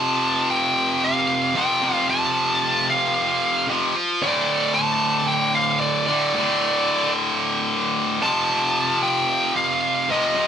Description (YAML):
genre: metal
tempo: 112 BPM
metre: 4/4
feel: straight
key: unclear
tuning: A4 = 440 Hz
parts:
  - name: high-gain lead guitar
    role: melody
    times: 0.0-10.5 s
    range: D5 to A5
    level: -21 LUFS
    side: equal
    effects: distortion
  - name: tight distorted guitar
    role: riff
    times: 0.0-10.5 s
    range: D2 to F3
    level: -21 LUFS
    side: equal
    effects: distortion
room: light reverb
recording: band playing live in one room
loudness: -18 LUFS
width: side -8 dB against mid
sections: 0.0-10.5 A section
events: none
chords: 0.0 F; 4.2 D5; 8.2 F